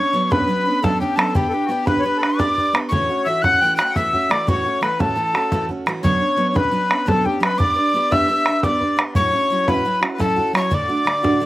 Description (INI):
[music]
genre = celtic folk, Celtic slip jig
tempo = 115 BPM (dotted quarters)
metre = 9/8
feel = straight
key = unclear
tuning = A4 = 440 Hz
[part]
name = mellow wooden whistle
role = melody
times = 0.0-11.5 s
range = G5 to F#6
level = -20 LUFS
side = equal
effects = none
[part]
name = accordion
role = second line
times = 0.0-11.5 s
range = F#4 to G5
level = -23 LUFS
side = left 4 dB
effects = slapback echo
[part]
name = picked steel-string acoustic guitar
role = accompaniment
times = 0.0-11.5 s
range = D2 to B4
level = -23 LUFS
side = right 2 dB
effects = none
[part]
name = bodhran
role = percussion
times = 0.3-11.4 s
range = none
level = -21 LUFS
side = equal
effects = none
[sound]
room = little or no reverb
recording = recorded outdoors, with no room sound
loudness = -16 LUFS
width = side -16 dB against mid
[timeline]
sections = 0.0-11.5 A section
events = none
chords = 0.0 Bmadd9; 1.4 G/B; 2.9 A6; 6.0 Bmadd9; 7.6 G/B; 9.2 A6; 10.7 D